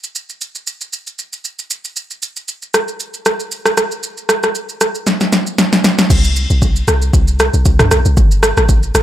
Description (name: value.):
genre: amapiano.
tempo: 116 BPM.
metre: 4/4.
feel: swing 55% on 16ths.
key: G major.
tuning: A4 = 441 Hz.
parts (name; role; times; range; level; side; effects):
deep house drum kit; drums; 0.0-9.0 s; crash cymbal, kick drum, rim click, shaker, snare drum, toms; -14 LUFS; equal; overdrive.
deep log drum bass; bass; 6.1-9.0 s; G1 to C2; -14 LUFS; equal; none.
room: light reverb.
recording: none.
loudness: -12 LUFS.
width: side -12 dB against mid.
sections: 0.0-6.1 A section; 6.1-9.0 B section.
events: drum fill 5.1-6.1; drop 6.1-9.0.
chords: none.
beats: 0.41 0.93 1.45 | 1.96 2.48 3.00 3.52 | 4.03 4.55 5.07 5.58 | 6.10 6.62 7.14 7.65 | 8.17 8.69.